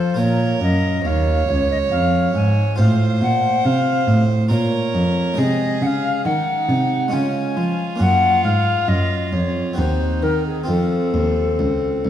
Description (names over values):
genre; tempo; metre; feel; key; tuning
classical, baroque-style sonata movement with continuo; 69 BPM; 3/4; straight; Bb minor; A4 = 440 Hz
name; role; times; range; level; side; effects
mellow alto recorder; melody; 0.0-12.1 s; Ab4 to Ab5; -22 LUFS; left 4 dB; none
rich violin; second line; 0.0-12.1 s; C4 to Db5; -26 LUFS; right 7 dB; none
harpsichord; accompaniment; 0.0-12.1 s; C2 to C5; -23 LUFS; right 1 dB; none
dark cello; bass; 0.0-12.1 s; C2 to F3; -20 LUFS; right 1 dB; none
room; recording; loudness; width
wet scoring stage reverb, RT60 1.5 s; dark, warm production; -16 LUFS; side -10 dB against mid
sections
0.0-12.1 A section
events
none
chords
0.2 Bbm; 2.8 F/A; 4.5 Bbm; 5.4 Ab/C; 7.1 Db; 8.0 Gb; 9.8 Cdim/Eb; 10.7 F